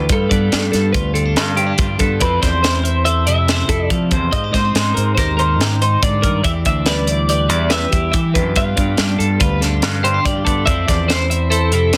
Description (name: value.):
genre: math rock and midwest emo.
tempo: 142 BPM.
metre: 5/4.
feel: straight.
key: unclear.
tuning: A4 = 440 Hz.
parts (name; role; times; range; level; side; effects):
twelve-string electric guitar; accompaniment; 0.0-12.0 s; F2 to A4; -24 LUFS; equal; none.
twelve-string electric guitar; arpeggios; 0.0-12.0 s; G4 to F5; -26 LUFS; equal; subtle chorus, plate reverb.
growling fingered electric bass; bass; 0.0-12.0 s; D2 to F3; -21 LUFS; equal; overdrive.
twelve-string electric guitar; melody; 0.1-12.0 s; A4 to F5; -23 LUFS; equal; warbly pitch drift, plate reverb.
crisp fusion drum kit; drums; 0.1-12.0 s; hi-hat, kick drum, snare drum; -21 LUFS; equal; none.
room: light reverb.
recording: dense, heavily limited modern master.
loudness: -16 LUFS.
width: mono.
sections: 0.0-12.0 A section.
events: none.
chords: 0.1 G9; 2.2 Fmaj7; 4.3 Abmaj7; 6.4 Em7; 8.6 G9; 10.7 Fmaj7.